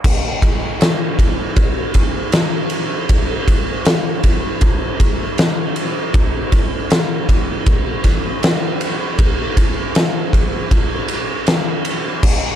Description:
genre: metal.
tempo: 79 BPM.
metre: 4/4.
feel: straight.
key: none.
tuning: none.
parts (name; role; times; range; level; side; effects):
oversized low-tuned drum kit; drums; 0.0-12.4 s; crash cymbal, kick drum, ride cymbal, snare drum; -14 LUFS; equal; none.
room: little or no reverb.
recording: dark, warm production.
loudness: -14 LUFS.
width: side -10 dB against mid.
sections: 0.0-12.6 A section.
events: none.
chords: none.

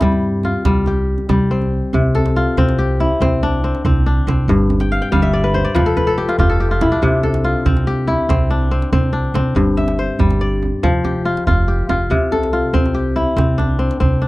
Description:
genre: west african traditional, West African string and xylophone music.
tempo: 94 BPM (dotted quarters).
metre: 12/8.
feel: straight.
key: C major.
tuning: A4 = 440 Hz.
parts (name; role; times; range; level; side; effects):
kora; arpeggios; 0.0-14.3 s; G2 to G5; -17 LUFS; left 2 dB; none.
upright bass; bass; 0.0-14.3 s; F1 to G2; -19 LUFS; equal; none.
djembe; percussion; 0.0-14.2 s; none; -20 LUFS; right 2 dB; none.
room: little or no reverb.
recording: dry, close 1970s-style studio recording.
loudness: -14 LUFS.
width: side -19 dB against mid.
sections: 0.0-1.9 A section; 1.9-14.3 B section.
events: kora fill 4.8-7.0.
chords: 0.0 C; 4.5 G5; 5.8 Fmaj9#11; 7.0 C; 9.6 G5; 10.8 Fsus2; 12.1 C.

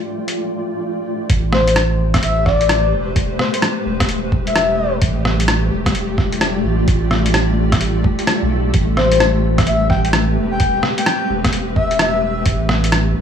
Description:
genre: future garage.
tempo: 129 BPM.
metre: 4/4.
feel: swing 64% on 16ths.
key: A minor.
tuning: A4 = 438 Hz.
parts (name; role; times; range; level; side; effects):
granular cloud pad; sustained chords; 0.0-13.2 s; G3 to G5; -22 LUFS; left 2 dB; built-in reverb, sidechain pumping.
flickering grainy texture; texture; 0.2-13.2 s; G3 to G4; -28 LUFS; right 2 dB; built-in reverb.
lo-fi sampler-style drum kit; drums; 0.3-13.0 s; hi-hat, rim click; -20 LUFS; equal; overdrive, small room ambience.
soft dub sub bass; bass; 1.3-13.2 s; E1 to B1; -19 LUFS; right 1 dB; sidechain pumping.
electronic kick drum; drums; 1.3-12.6 s; none; -18 LUFS; right 1 dB; overdrive, small room ambience.
breathy flute-like synth lead; melody; 1.5-4.9, 9.0-12.5 s; C5 to G5; -19 LUFS; left 3 dB; tremolo, lush chorus, cassette tape, dub echo.
room: moderate recital hall reverb, RT60 1.5 s, digital ambience.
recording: studio ambience.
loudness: -14 LUFS.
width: side -8 dB against mid.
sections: 0.0-1.3 A section; 1.3-13.2 B section.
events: none.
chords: 0.0 F69; 1.3 Am9; 5.0 F69; 8.7 Am9; 12.5 F69.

